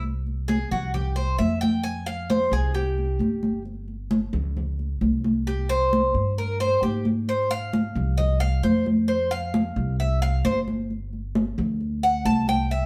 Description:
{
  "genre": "latin, Cuban son and guajira",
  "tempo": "133 BPM",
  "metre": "4/4",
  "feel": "straight",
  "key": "F harmonic minor",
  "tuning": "A4 = 440 Hz",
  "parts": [
    { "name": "Cuban tres", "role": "arpeggios", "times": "0.0-12.9 s", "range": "Gb4 to A5", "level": "-28 LUFS", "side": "equal", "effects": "none" },
    { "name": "upright bass", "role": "bass", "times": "0.0-12.9 s", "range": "G1 to Ab2", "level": "-29 LUFS", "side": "equal", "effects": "none" },
    { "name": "congas", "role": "percussion", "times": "0.0-12.9 s", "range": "none", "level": "-28 LUFS", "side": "equal", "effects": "none" }
  ],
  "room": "wet studio reverb, RT60 0.8 s",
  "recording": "heard from further back in the room",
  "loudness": "-24 LUFS",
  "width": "mono",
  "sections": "0.0-12.9 A section",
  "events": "Cuban tres solo 0.0-12.9",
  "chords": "0.0 Cadd11; 1.8 F5; 3.7 N.C.; 5.5 C5; 7.3 Ab; 9.1 Fsus2; 10.9 G5"
}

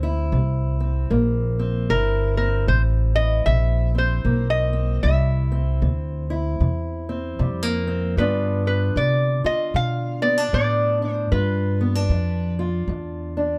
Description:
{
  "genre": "acoustic country blues, solo or duo",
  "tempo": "76 BPM",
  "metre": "4/4",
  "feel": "swing 61% on 8ths",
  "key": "C major",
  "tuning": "A4 = 440 Hz",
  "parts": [
    { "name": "fingerpicked steel-string acoustic guitar", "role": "accompaniment", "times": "0.0-13.6 s", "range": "G2 to F4", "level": "-29 LUFS", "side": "equal", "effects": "none" },
    { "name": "upright bass", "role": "bass", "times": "0.0-13.6 s", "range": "G1 to C3", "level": "-24 LUFS", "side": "equal", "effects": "none" },
    { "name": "lap resonator guitar", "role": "melody", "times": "1.9-12.5 s", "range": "Bb4 to F5", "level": "-26 LUFS", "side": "equal", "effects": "none" }
  ],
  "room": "moderate booth ambience, RT60 0.2 s",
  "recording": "none",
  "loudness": "-22 LUFS",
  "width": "mono",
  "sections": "0.0-13.6 A section",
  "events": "none",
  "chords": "0.0 C7; 8.2 G7"
}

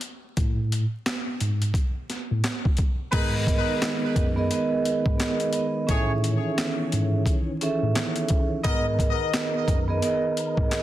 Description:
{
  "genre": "hip hop, boom-bap hip-hop",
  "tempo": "87 BPM",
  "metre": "4/4",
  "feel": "swing 61% on 16ths",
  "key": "G# minor",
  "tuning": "A4 = 440 Hz",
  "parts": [
    { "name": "boom bap sampler-style drum kit", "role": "drums", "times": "0.0-10.8 s", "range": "crash cymbal, handclaps, hi-hat, kick drum, snare drum", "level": "-26 LUFS", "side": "equal", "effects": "overdrive" },
    { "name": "mellow tine electric piano", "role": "bass", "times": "0.4-10.7 s", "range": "F#2 to A2", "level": "-26 LUFS", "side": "equal", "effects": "medium stereo tremolo" },
    { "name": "vibraphone with soft mallets", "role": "accompaniment", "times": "3.1-10.8 s", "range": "B3 to E5", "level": "-26 LUFS", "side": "right 3 dB", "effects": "cassette tape" },
    { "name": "percussive tonewheel organ", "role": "sustained chords", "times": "3.1-10.8 s", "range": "D#3 to A#4", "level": "-31 LUFS", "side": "left 1 dB", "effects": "chorus vibrato, fast rotary speaker" },
    { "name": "warm horn section", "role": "stabs", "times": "3.1-8.9 s", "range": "G#3 to D#5", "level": "-31 LUFS", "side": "left 4 dB", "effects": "ping-pong delay" }
  ],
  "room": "little or no reverb",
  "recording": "dense, heavily limited modern master, vinyl crackle",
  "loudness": "-22 LUFS",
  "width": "side -14 dB against mid",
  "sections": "0.0-3.1 A section; 3.1-10.8 B section",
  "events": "break 0.0-3.1",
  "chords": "0.4 N.C.; 3.1 G#madd9; 5.9 Amaj7; 8.6 G#madd9"
}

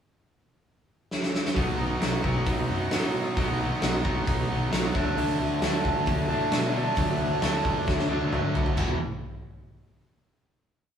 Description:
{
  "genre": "classic rock",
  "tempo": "133 BPM",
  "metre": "4/4",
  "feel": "straight",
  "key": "unclear",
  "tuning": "A4 = 440 Hz",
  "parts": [
    { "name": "huge arena drum kit", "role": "drums", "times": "1.1-8.9 s", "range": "crash cymbal, hi-hat, kick drum, snare drum, toms", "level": "-28 LUFS", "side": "equal", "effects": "none" },
    { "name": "crunchy overdriven guitar", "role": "riff", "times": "1.5-9.0 s", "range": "E2 to D4", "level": "-31 LUFS", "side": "left 2 dB", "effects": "none" },
    { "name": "picked twelve-string acoustic guitar", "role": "accompaniment", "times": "1.6-9.0 s", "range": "E2 to G#4", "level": "-38 LUFS", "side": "left 3 dB", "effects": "none" },
    { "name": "crunchy overdriven guitar", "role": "riff", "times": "1.6-9.0 s", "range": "E2 to D#4", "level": "-29 LUFS", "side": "right 4 dB", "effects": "none" },
    { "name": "fuzz picked electric bass", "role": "bass", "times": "1.6-9.0 s", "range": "E1 to B2", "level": "-30 LUFS", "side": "left 1 dB", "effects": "overdrive" }
  ],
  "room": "moderate stone room reverb, RT60 1.1 s",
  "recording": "band playing live in one room",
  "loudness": "-24 LUFS",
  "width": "side -8 dB against mid",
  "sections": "0.0-1.6 pickup bar; 1.6-8.8 pre-chorus; 8.8-10.6 final chord",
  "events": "drum fill 1.1-1.6, 7.9-8.8",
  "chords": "0.0 N.C.; 1.6 B; 5.0 D; 8.8 E"
}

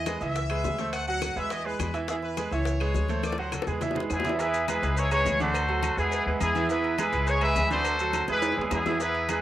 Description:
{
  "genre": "latin, salsa",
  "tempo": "208 BPM",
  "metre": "4/4",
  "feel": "straight",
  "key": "E major",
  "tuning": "A4 = 440 Hz",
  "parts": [
    { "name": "brilliant horn section", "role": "melody", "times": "0.0-4.1 s", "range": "G#4 to F#5", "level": "-33 LUFS", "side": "left 2 dB", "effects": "cassette tape" },
    { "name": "bright grand piano", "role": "accompaniment", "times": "0.0-9.4 s", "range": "D3 to F#5", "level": "-30 LUFS", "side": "right 5 dB", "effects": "cassette tape" },
    { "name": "upright bass", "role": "bass", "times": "0.0-9.4 s", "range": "C#2 to E2", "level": "-31 LUFS", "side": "left 1 dB", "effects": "none" },
    { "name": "bongos and cowbell", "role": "percussion", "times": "0.1-9.4 s", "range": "none", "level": "-38 LUFS", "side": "left 7 dB", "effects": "none" },
    { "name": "claves", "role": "percussion", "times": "0.1-9.4 s", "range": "none", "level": "-40 LUFS", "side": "left 9 dB", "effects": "none" },
    { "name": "congas", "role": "percussion", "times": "0.1-9.4 s", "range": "none", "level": "-38 LUFS", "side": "left 7 dB", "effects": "none" },
    { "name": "maracas", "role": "percussion", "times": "0.1-9.4 s", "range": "none", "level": "-44 LUFS", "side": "left 8 dB", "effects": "none" },
    { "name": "timbales and agogo bells", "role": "percussion", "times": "0.1-9.4 s", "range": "none", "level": "-36 LUFS", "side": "right 5 dB", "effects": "none" },
    { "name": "bright trumpet section", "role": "melody", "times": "4.1-9.4 s", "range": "B3 to E5", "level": "-26 LUFS", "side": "left 1 dB", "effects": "cassette tape" }
  ],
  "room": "light reverb, small room reverb",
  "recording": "home recording on cassette",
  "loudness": "-24 LUFS",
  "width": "side -13 dB against mid",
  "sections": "0.0-4.4 A section; 4.4-9.4 B section",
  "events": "drum fill 3.2-4.4, 8.3-9.0",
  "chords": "0.4 C#m7; 0.9 D7; 1.5 E; 2.7 C#m7; 3.2 D7; 3.8 E; 5.0 C#m7; 5.5 D7; 6.1 E; 7.3 C#m7; 7.8 D7; 8.4 E"
}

